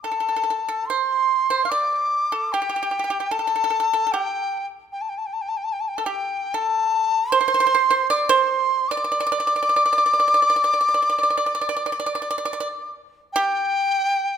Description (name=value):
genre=chinese traditional, Chinese chamber ensemble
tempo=74 BPM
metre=4/4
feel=uneven beats, rubato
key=unclear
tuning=A4 = 442 Hz
part: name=large dizi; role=melody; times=0.0-14.4 s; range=G5 to D6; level=-20 LUFS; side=equal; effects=none
part: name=pipa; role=second line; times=0.0-14.4 s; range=G4 to F5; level=-24 LUFS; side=right 4 dB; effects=none
room=moderate recital hall reverb, RT60 1.8 s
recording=close, detailed microphones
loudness=-19 LUFS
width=side -8 dB against mid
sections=0.9-13.8 A section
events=none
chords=none